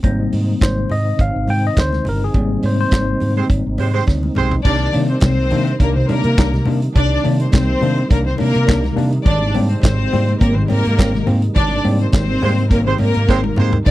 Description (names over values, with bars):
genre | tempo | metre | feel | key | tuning
disco | 104 BPM | 4/4 | straight | unclear | A4 = 440 Hz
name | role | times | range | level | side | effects
tine electric piano | accompaniment | 0.0-13.9 s | Ab2 to G5 | -21 LUFS | left 2 dB | medium stereo tremolo
percussive tonewheel organ | sustained chords | 0.0-13.9 s | C3 to Eb4 | -24 LUFS | right 2 dB | chorus vibrato, slow rotary speaker
overdriven fingered electric bass | bass | 0.0-13.9 s | G1 to C3 | -19 LUFS | equal | none
warm soul drum kit | drums | 0.0-13.9 s | crash cymbal, handclaps, hi-hat, kick drum, snare drum, splash cymbal, toms | -15 LUFS | equal | none
congas | percussion | 0.0-13.9 s | none | -29 LUFS | left 2 dB | none
cowbell | percussion | 0.0-13.9 s | none | -33 LUFS | right 7 dB | none
mellow horn section | stabs | 3.4-4.5, 12.4-13.8 s | Ab3 to C5 | -21 LUFS | right 7 dB | none
dark studio string section | second line | 4.6-13.9 s | Bb3 to D5 | -20 LUFS | left 1 dB | none
room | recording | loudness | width
little or no reverb | dry, close 1970s-style studio recording | -14 LUFS | side -16 dB against mid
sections
0.0-4.7 A section; 4.7-13.9 B section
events
tine electric piano solo 0.0-4.7; band accent 2.3-4.7, 11.6-13.9; drum fill 4.1-4.7, 13.3-13.9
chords
0.0 Abmaj7; 4.7 Cm7; 9.3 Abmaj7